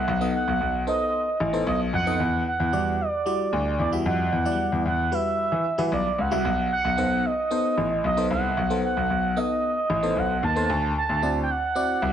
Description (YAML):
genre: early-eighties boogie funk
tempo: 113 BPM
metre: 4/4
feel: straight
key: E minor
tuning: A4 = 442 Hz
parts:
  - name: expressive synth lead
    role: melody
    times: 0.0-12.1 s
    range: D5 to A5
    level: -25 LUFS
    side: right 4 dB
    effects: chorus
  - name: clear grand piano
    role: bass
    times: 0.0-12.1 s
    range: A1 to E3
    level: -26 LUFS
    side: left 2 dB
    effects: none
  - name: FM electric piano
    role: accompaniment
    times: 0.2-12.1 s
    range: F#3 to E5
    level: -29 LUFS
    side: left 2 dB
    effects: chorus, phaser
room: light reverb, small room ambience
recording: none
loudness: -22 LUFS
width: side -9 dB against mid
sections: 0.0-12.1 A section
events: none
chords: 0.0 B7b9; 2.2 Em9; 6.4 B7b9; 10.7 D9